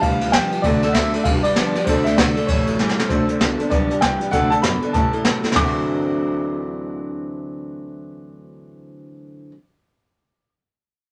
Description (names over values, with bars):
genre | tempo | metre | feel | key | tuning
rockabilly | 195 BPM | 4/4 | swing 62% on 8ths | D mixolydian | A4 = 440 Hz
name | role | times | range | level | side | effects
clear upright piano | melody | 0.0-9.5 s | C5 to D6 | -25 LUFS | equal | none
picked steel-string acoustic guitar | accompaniment | 0.0-9.6 s | G2 to C5 | -28 LUFS | equal | none
electric guitar through a small old amp | riff | 0.0-9.5 s | G2 to E4 | -27 LUFS | equal | none
upright bass | bass | 0.0-9.5 s | G1 to C#3 | -31 LUFS | equal | none
jazz brush drum kit | drums | 0.0-5.7 s | hi-hat, kick drum, ride cymbal, snare drum, toms | -23 LUFS | equal | none
room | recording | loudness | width
moderate studio reverb, RT60 0.5 s | none | -19 LUFS | mono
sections
0.0-3.1 A section; 3.1-5.6 B section; 5.6-8.0 C section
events
drum fill 2.8-3.1, 5.4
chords
0.0 G7; 0.6 D7; 1.3 G7; 1.9 D7; 2.5 A7; 3.1 D7; 3.7 G7; 4.3 D7; 4.9 A7; 5.6 D9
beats
0.02 0.33 | 0.64 0.95 1.26 1.56 | 1.87 2.18 2.49 2.79 | 3.10 3.41 3.72 4.03 | 4.33 4.64 4.95 5.26 | 5.56 5.87 6.18 6.49 | 6.79 7.10 7.41 7.72